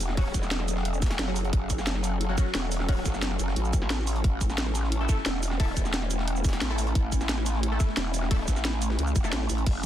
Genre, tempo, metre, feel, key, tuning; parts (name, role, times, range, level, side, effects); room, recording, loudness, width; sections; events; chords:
dark technical drum and bass; 177 BPM; 4/4; straight; A4 = 437 Hz
swarming drone; sustained chords; 0.0-9.9 s; F#3 to A4; -34 LUFS; equal; built-in reverb, sidechain pumping
growl bass; bass; 0.0-9.9 s; E1 to C#2; -29 LUFS; equal; chorus, overdrive, sidechain pumping
breakbeat sampler-style drum kit; drums; 0.0-9.9 s; hi-hat, snare drum; -40 LUFS; left 1 dB
drum and bass drum kit; drums; 0.0-9.9 s; crash cymbal, hi-hat, shaker, snare drum; -32 LUFS; right 1 dB; small room ambience
orchestra-hit-like synth stab; stabs; 0.2-2.9, 5.0-9.3 s; F#3 to A4; -37 LUFS; left 2 dB; built-in reverb, phaser, tape echo
electronic kick drum; drums; 0.2-9.9 s; -26 LUFS; equal; small room ambience
digital ambience; dense, heavily limited modern master; -24 LUFS; side -11 dB against mid
0.0-9.9 A section
0.0 F#m; 4.2 A